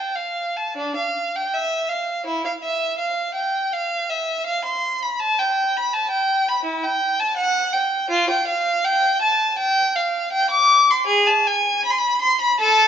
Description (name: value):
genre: classical, baroque-style suite movement for unaccompanied violin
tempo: 81 BPM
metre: 4/4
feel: rubato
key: A minor from 9.6 s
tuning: A4 = 436 Hz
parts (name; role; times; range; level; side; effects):
- clear violin; solo; 0.0-12.9 s; D4 to D6; -18 LUFS; equal; none
room: moderate recital hall reverb, RT60 1.7 s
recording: nothing above 7.7 kHz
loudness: -18 LUFS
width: side -8 dB against mid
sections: 0.0-12.9 A section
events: none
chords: none